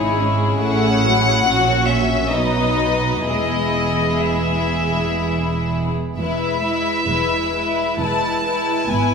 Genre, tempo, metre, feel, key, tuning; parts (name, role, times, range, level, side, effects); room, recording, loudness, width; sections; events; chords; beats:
classical, slow romantic movement for string orchestra; 61-72 BPM; 3/4; rubato; E major; A4 = 440 Hz
rich studio violin section; melody; 0.0-9.1 s; C#5 to A5; -21 LUFS; left 3 dB
clear studio violin section; second line; 0.0-9.1 s; C#4 to B4; -22 LUFS; left 3 dB
warm studio viola section; accompaniment; 0.0-9.1 s; F#3 to E4; -24 LUFS; equal
dark studio cello section; bass; 0.0-9.1 s; E2 to B2; -25 LUFS; right 4 dB
dark symphonic double bass section; bass; 0.0-9.1 s; E1 to B1; -25 LUFS; right 4 dB
wet concert hall reverb, RT60 1.9 s; minimal, uncompressed stereo recording; -16 LUFS; side -5 dB against mid
0.0-6.2 A section; 6.2-9.1 B section
0.0 C#m; 0.6 A; 1.5 F#7/A#; 2.3 B; 3.3 E
| 0.62 1.47 2.33 | 3.27 4.25 5.21 | 6.17 7.06 8.01 | 8.89